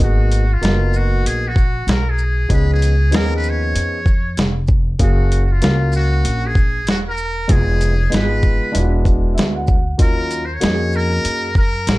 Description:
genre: hip hop, jazz-hop.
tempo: 96 BPM.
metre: 4/4.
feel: swing 64% on 16ths.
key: G# dorian.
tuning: A4 = 437 Hz.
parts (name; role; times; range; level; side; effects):
trumpet with metal mute; melody; 0.0-12.0 s; E#4 to C#5; -23 LUFS; equal; slapback echo.
dark grand piano; accompaniment; 0.0-11.5 s; E#3 to F#5; -23 LUFS; equal; none.
upright bass; bass; 0.0-12.0 s; E1 to F#2; -18 LUFS; equal; none.
dusty soul sampler-style drum kit; drums; 0.0-12.0 s; hi-hat, kick drum, shaker, snare drum; -17 LUFS; equal; overdrive.
room: little or no reverb.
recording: dark, warm production.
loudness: -14 LUFS.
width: side -19 dB against mid.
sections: 0.0-12.0 A section.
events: grand piano fill 9.1-10.0.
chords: 0.0 G#m7; 2.5 C#7; 5.0 F#maj7; 7.5 Fm7b5; 8.7 E9; 10.0 D#m9.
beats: 0.62 1.24 1.87 | 2.49 3.12 3.74 4.37 | 4.99 5.62 6.24 6.87 | 7.49 8.12 8.74 9.37 | 9.99 10.62 11.24 11.87.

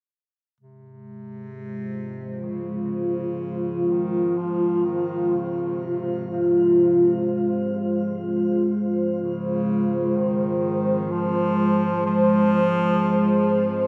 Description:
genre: dark ambient drone.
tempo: free time.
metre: none.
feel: none.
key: F minor.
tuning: A4 = 440 Hz.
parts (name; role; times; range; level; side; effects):
bright bass clarinet; melody; 0.6-13.9 s; C3 to F3; -32 LUFS; equal; shimmer reverb, delay.
deep dark ambient pad; sustained chords; 1.7-13.9 s; Ab3 to C5; -23 LUFS; equal; chorus, built-in reverb, shimmer reverb.
room: wet huge ambient reverb, RT60 8.2 s.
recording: none.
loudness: -22 LUFS.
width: mono.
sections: 0.6-13.9 A section.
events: fade-in on bass clarinet 0.6-13.9.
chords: 0.6 Fm.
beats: free time.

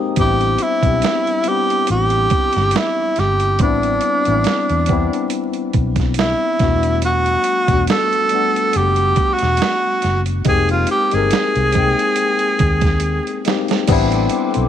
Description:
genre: R&B, neo-soul.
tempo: 70 BPM.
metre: 4/4.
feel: swing 55% on 16ths.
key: A minor.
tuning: A4 = 438 Hz.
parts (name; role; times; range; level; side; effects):
barky tine electric piano; accompaniment; 0.0-14.7 s; G3 to G5; -21 LUFS; left 8 dB; medium stereo tremolo.
hollow soft pad; sustained chords; 0.0-0.1, 13.9-14.7 s; Ab3 to Eb6; -31 LUFS; right 1 dB; chorus.
breathy tenor saxophone; melody; 0.2-13.5 s; D4 to A4; -17 LUFS; right 1 dB; none.
vintage muted fingered electric bass; bass; 0.2-14.7 s; E1 to E2; -19 LUFS; equal; none.
dusty soul sampler-style drum kit; drums; 0.2-14.7 s; crash cymbal, hi-hat, kick drum, snare drum; -21 LUFS; right 3 dB; none.
room: light reverb.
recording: 1960s-style stereo, vinyl crackle.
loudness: -14 LUFS.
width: side -10 dB against mid.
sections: 0.2-13.9 A section.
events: break 0.0; drum fill 13.0-13.9.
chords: 0.2 Am11; 6.6 Em11; 10.5 Fm11 (rootless); 13.9 Am11.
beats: | 0.17 1.03 1.89 2.75 | 3.60 4.46 5.32 6.17 | 7.03 7.89 8.74 9.60 | 10.46 11.32 12.17 13.03 | 13.89.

